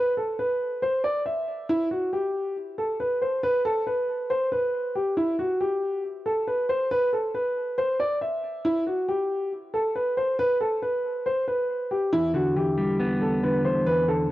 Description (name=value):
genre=hip hop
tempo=138 BPM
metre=4/4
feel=half-time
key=E minor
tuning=A4 = 440 Hz
part: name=dark grand piano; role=melody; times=0.0-14.3 s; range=E4 to E5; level=-24 LUFS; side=equal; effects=none
part: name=mellow electric guitar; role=accompaniment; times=12.1-14.3 s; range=E2 to B3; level=-24 LUFS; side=equal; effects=none
room=light reverb, small room reverb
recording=dry, gritty hardware recording, transformer saturation, cassette tape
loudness=-23 LUFS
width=side -15 dB against mid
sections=0.0-12.1 A section; 12.1-14.3 B section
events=none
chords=0.0 N.C.; 12.1 Em7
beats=0.39 0.82 1.26 | 1.69 2.13 2.56 3.00 | 3.43 3.87 4.30 4.74 | 5.17 5.61 6.04 6.48 | 6.91 7.34 7.78 8.21 | 8.65 9.08 9.52 9.95 | 10.39 10.82 11.26 11.69 | 12.13 12.56 13.00 13.43 | 13.87 14.30